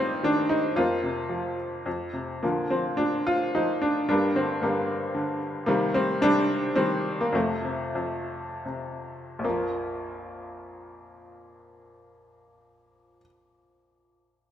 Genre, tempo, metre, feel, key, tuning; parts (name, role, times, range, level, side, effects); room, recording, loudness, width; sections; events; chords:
classical, lyrical solo piano; 75-116 BPM; 3/4; rubato; Bb major; A4 = 442 Hz
bright upright piano; solo; 0.0-14.5 s; Bb1 to G4; -24 LUFS; equal
moderate recital hall reverb, RT60 1.4 s; minimal, uncompressed stereo recording; -24 LUFS; side -10 dB against mid
0.0-9.4 A section; 9.4-14.0 B section
slowing down 5.7-9.4
0.0 Eb/G; 0.8 Fsus4; 1.9 F5; 2.4 Bb; 4.1 Gm; 5.7 Cm; 7.3 F; 9.4 Bb5